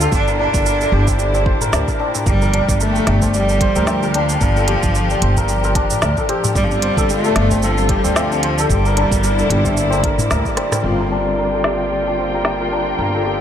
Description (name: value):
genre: organic downtempo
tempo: 112 BPM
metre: 4/4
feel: swing 57% on 16ths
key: G dorian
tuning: A4 = 440 Hz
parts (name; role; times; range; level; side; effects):
- bright cello; melody; 0.0-10.3 s; F3 to F4; -22 LUFS; right 2 dB; tape echo, shimmer reverb
- bright studio string section; sustained chords; 0.0-13.4 s; Bb2 to G5; -25 LUFS; equal; sidechain pumping, low-pass filter, shimmer reverb
- santur; arpeggios; 0.0-13.4 s; D4 to G5; -20 LUFS; left 2 dB; low-pass filter, digital delay, shimmer reverb
- upright bass; bass; 0.0-13.4 s; G1 to D2; -20 LUFS; equal; sidechain pumping
- organic electronic drum kit; drums; 0.0-12.6 s; crash cymbal, hi-hat, rim click, shaker, snare drum; -23 LUFS; right 1 dB; low-pass filter on perc, low-pass filter on snare, low-pass filter on hats, low-pass filter on cymbals
- tabla; percussion; 0.0-10.8 s; none; -27 LUFS; left 2 dB; none
- electronic kick drum; drums; 0.1-10.5 s; none; -21 LUFS; equal; none
- overdriven tine electric piano; accompaniment; 10.8-13.4 s; D3 to F4; -24 LUFS; left 4 dB; fast tremolo, sidechain pumping, digital delay, shimmer reverb
room: light reverb, small room reverb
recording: none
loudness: -14 LUFS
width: side -9 dB against mid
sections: 0.0-10.8 A section; 10.8-13.4 B section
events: band accent 10.3; drum fill 10.6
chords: 0.1 C9/G; 2.3 Gm7; 6.6 Dm7/G; 8.7 C9/G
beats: | 0.13 0.66 1.20 1.73 | 2.27 2.81 3.34 3.88 | 4.41 4.95 5.48 6.02 | 6.55 7.09 7.63 8.16 | 8.70 9.23 9.77 10.30 | 10.84 11.38 11.91 12.45 | 12.98